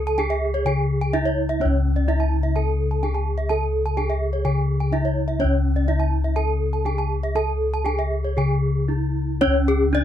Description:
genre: Balinese gamelan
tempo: 113-127 BPM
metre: 4/4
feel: straight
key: C# pelog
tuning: A4 = 440 Hz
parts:
  - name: gamelan-type bronze metallophone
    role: melody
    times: 0.0-10.0 s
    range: C#4 to A4-20c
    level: -26 LUFS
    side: right 2 dB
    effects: none
  - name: gamelan-type bossed gongs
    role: bass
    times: 0.0-10.0 s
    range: C#2 to A4-20c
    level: -21 LUFS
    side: left 2 dB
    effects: none
  - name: gamelan-type bronze metallophone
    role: arpeggios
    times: 0.1-10.0 s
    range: G#4-30c to A5-20c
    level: -26 LUFS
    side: equal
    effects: none
room: little or no reverb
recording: close, detailed microphones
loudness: -19 LUFS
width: side -10 dB against mid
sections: 0.0-9.4 A section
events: none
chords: none

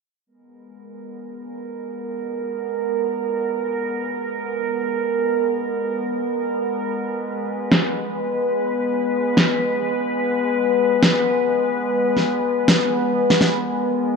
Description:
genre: heavy wobble dubstep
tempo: free time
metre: none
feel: none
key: G# minor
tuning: A4 = 437 Hz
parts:
  - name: evolving wavetable pad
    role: sustained chords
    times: 1.0-14.2 s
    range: G#3 to B4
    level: -20 LUFS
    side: left 1 dB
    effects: chorus, built-in reverb
  - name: electronic snare drum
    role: drums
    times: 7.7-13.5 s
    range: none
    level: -19 LUFS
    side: right 1 dB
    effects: low-pass filter on snare
room: moderate lush hall reverb, RT60 2.0 s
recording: none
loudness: -19 LUFS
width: side -4 dB against mid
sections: 0.3-14.2 A section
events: drum fill 13.3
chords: 0.3 G#madd9

